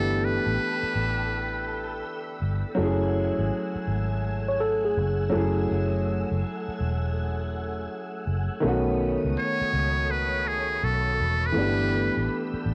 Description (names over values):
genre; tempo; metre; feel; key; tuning
lo-fi hip hop; 82 BPM; 4/4; swing 66% on 16ths; F# dorian; A4 = 439 Hz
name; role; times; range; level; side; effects
trumpet with metal mute; melody; 0.0-2.4, 9.4-12.5 s; G#4 to C#5; -30 LUFS; equal; low-pass filter, cassette tape
warm upright piano; accompaniment; 0.0-12.7 s; D#3 to G#4; -31 LUFS; equal; cassette tape, low-pass filter
ensemble organ-string; sustained chords; 0.0-12.7 s; A3 to E6; -39 LUFS; equal; ensemble chorus, low-pass filter, cassette tape
vintage muted fingered electric bass; bass; 0.0-12.7 s; E1 to C#2; -30 LUFS; equal; transformer saturation
tine electric piano; second line; 4.5-5.3 s; G#4 to C#5; -29 LUFS; equal; low-pass filter, cassette tape
room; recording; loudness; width
light reverb; home recording on cassette; -26 LUFS; mono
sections
0.0-8.6 A section; 8.6-12.7 B section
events
none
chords
0.0 G69; 2.8 F#m9; 8.6 B9; 11.6 G69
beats
0.59 1.32 2.05 | 2.78 3.51 4.25 4.98 | 5.71 6.44 7.17 7.90 | 8.63 9.37 10.10 10.83 | 11.56 12.29